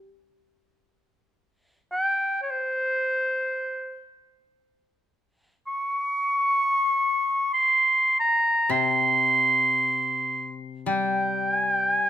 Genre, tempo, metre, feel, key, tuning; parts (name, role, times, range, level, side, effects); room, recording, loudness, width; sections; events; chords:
japanese traditional, Japanese chamber music; free time; A4 = 438 Hz
koto; accompaniment; 0.0-0.1, 8.7-12.1 s; C3 to G3; -28 LUFS; left 4 dB
clear oboe; melody; 1.9-12.1 s; C5 to Db6; -21 LUFS; right 1 dB
light reverb; -21 LUFS; side -11 dB against mid
0.0-4.3 A section; 4.3-12.1 A section